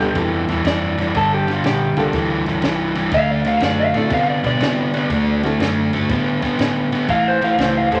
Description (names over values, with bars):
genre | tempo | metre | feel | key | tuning
electric blues shuffle | 121 BPM | 4/4 | swing 67% on 8ths | unclear | A4 = 441 Hz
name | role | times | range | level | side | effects
electric guitar through a small old amp | melody | 0.0-8.0 s | F4 to F5 | -23 LUFS | equal | none
dark upright piano | accompaniment | 0.0-8.0 s | Bb3 to C5 | -28 LUFS | equal | none
crunchy overdriven guitar | riff | 0.0-8.0 s | G2 to B3 | -21 LUFS | equal | none
vintage muted fingered electric bass | bass | 0.0-8.0 s | G1 to C3 | -29 LUFS | equal | none
compact cocktail drum kit | drums | 0.0-8.0 s | kick drum, ride cymbal, snare drum | -29 LUFS | equal | none
room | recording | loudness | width
moderate large studio reverb, RT60 0.9 s | none | -18 LUFS | mono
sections
0.0-8.0 A section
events
none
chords
0.0 G7; 1.1 Gm7; 3.1 D7; 7.1 A